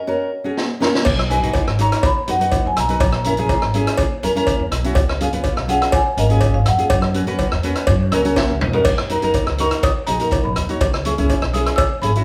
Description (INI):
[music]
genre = calypso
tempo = 123 BPM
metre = 4/4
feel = straight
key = B major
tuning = A4 = 445 Hz
[part]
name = marimba with medium mallets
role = melody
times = 0.0-12.2 s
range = C#5 to E6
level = -24 LUFS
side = equal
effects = none
[part]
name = nylon-string guitar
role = accompaniment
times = 0.1-12.2 s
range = C#4 to E5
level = -24 LUFS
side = equal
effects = none
[part]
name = street-band drum kit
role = drums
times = 0.6-12.2 s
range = crash cymbal, hi-hat, kick drum, rim click, snare drum, toms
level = -24 LUFS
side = equal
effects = none
[part]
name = cowbell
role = percussion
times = 1.0-11.9 s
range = none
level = -26 LUFS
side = equal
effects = none
[part]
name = upright bass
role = bass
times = 1.1-12.2 s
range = G#1 to F#2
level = -24 LUFS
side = equal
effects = none
[sound]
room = moderate large studio reverb, RT60 0.8 s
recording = band playing live in one room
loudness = -18 LUFS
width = mono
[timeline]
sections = 0.0-1.1 A section; 1.1-12.2 B section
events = break 0.0-1.1; marimba solo 0.0-1.1; drum fill 0.6-1.1, 8.4-8.9; nylon-string guitar fill 7.9-8.9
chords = 0.0 F#; 1.1 B6; 3.0 A#m7b5; 5.0 C#7; 6.9 F#7sus4; 7.9 F#7; 8.9 D#m7; 10.8 C#m7